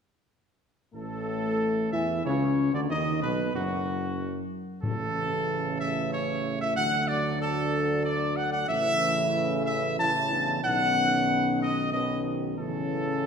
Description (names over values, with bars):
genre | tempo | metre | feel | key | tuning
classical, ceremonial fanfare | 93 BPM | 3/4 | straight | A major | A4 = 441 Hz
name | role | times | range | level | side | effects
clear trumpet section | melody | 0.9-13.3 s | F#4 to A5 | -28 LUFS | equal | none
dark French horn section | sustained chords | 0.9-13.3 s | F#3 to E4 | -32 LUFS | left 5 dB | none
warm trombone section | sustained chords | 0.9-13.3 s | F#2 to F#3 | -33 LUFS | right 2 dB | none
mellow tuba | bass | 0.9-13.3 s | F#1 to E2 | -32 LUFS | right 3 dB | none
timpani | percussion | 4.8-5.8 s | A2 | -36 LUFS | left 2 dB | none
room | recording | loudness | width
wet concert hall reverb, RT60 1.8 s | minimal, uncompressed stereo recording | -25 LUFS | side -6 dB against mid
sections
0.9-13.3 A section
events
none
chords
0.9 A; 2.9 B; 4.8 A; 6.8 D; 8.7 A; 10.6 Badd9; 12.6 A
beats
| 0.94 1.59 2.25 | 2.90 3.54 4.19 | 4.83 5.47 6.12 | 6.76 7.40 8.04 | 8.68 9.32 9.98 | 10.63 11.28 11.93 | 12.58 13.24